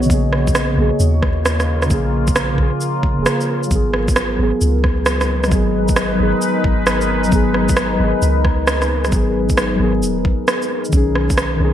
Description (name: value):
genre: future garage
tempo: 133 BPM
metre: 4/4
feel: swing 66% on 16ths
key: G# dorian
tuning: A4 = 442 Hz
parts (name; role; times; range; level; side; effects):
- muted felt-like synth keys; accompaniment; 0.0-11.7 s; C#3 to G#4; -20 LUFS; equal; chorus, sidechain pumping, ping-pong delay
- deep dark ambient pad; sustained chords; 0.0-11.7 s; G#3 to D#5; -22 LUFS; left 1 dB; chorus, built-in reverb, sidechain pumping
- soft 808-style bass; bass; 0.0-11.7 s; D#1 to D#2; -20 LUFS; equal; sidechain pumping
- electronic shaker and rim click; drums; 0.0-11.5 s; none; -20 LUFS; right 1 dB; overdrive, small room ambience, gated reverb
- electronic kick drum; drums; 0.1-11.4 s; none; -18 LUFS; equal; overdrive, small room ambience
room: light reverb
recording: bright 1980s-style digital production, vinyl crackle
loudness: -14 LUFS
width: side -10 dB against mid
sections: 0.0-11.7 A section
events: none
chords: 0.1 A#m7; 3.7 G#m7; 10.9 B69